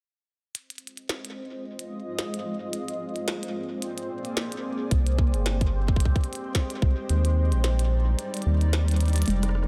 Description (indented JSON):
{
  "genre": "IDM",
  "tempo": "110 BPM",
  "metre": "4/4",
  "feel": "swing 56% on 16ths",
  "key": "F dorian",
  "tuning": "A4 = 440 Hz",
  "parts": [
    { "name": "granular cloud pad", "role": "sustained chords", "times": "1.3-9.7 s", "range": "G3 to Eb5", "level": "-36 LUFS", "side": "equal", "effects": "built-in reverb" },
    { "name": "glitchy drum kit", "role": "drums", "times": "0.5-9.7 s", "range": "hi-hat, rim click, snare drum", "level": "-36 LUFS", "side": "equal", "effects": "studio reverb, tape echo" },
    { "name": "bubbling stepped-filter texture", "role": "texture", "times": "1.1-9.7 s", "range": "Bb3 to C5", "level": "-39 LUFS", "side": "equal", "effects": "chorus, built-in reverb, sidechain pumping" },
    { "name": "round analog bass", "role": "bass", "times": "4.9-9.7 s", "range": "F1 to Eb2", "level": "-25 LUFS", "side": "equal", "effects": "tube saturation" },
    { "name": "electronic kick drum", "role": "drums", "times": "4.9-6.9 s", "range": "none", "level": "-26 LUFS", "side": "equal", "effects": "studio reverb" },
    { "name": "warbly dusty pluck", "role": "arpeggios", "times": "9.3-9.4 s", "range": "Ab3", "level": "-31 LUFS", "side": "equal", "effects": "chorus" }
  ],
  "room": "little or no reverb",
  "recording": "echo-heavy mix",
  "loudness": "-26 LUFS",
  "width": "mono",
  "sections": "0.5-9.3 A section",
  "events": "filter sweep on ambient pad 0.5-9.3; kick drops out 7.1-9.3; drum fill 9.0",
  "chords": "0.5 Fm7; 2.7 Bb7; 4.9 Abmaj7; 7.1 Ebmaj7"
}